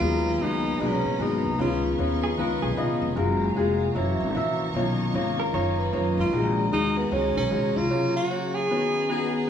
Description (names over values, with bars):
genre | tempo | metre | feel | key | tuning
uptempo gospel | 152 BPM | 4/4 | swing 63% on 8ths | F# major | A4 = 436 Hz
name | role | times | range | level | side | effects
clear tenor saxophone | melody | 0.0-2.0, 6.2-9.3 s | B3 to G#4 | -27 LUFS | right 1 dB | tape echo
clear baby grand piano | accompaniment | 0.0-9.5 s | A#2 to E5 | -27 LUFS | left 3 dB | none
tonewheel organ | sustained chords | 0.0-9.5 s | C#3 to G#4 | -30 LUFS | right 1 dB | stopped rotary speaker
warm studio string section | sustained chords | 0.0-9.5 s | C#5 to C#6 | -37 LUFS | right 1 dB | none
upright bass | bass | 0.0-7.9 s | E#1 to F#2 | -28 LUFS | left 1 dB | none
semi-hollow electric guitar | second line | 2.2-6.3 s | G#4 to C#5 | -31 LUFS | right 3 dB | wide subtle chorus
bright saxophone section | melody | 9.1-9.5 s | B3 to G#4 | -30 LUFS | left 2 dB | none
room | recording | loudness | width
light reverb | small room ambience | -22 LUFS | side -8 dB against mid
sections
0.0-9.5 A section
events
none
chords
0.0 G#m9; 1.6 C#9; 3.2 F#maj9; 4.0 F#7; 4.8 Bmaj9#11; 6.3 F#69/A#; 7.9 F#/C#; 8.7 C#9sus4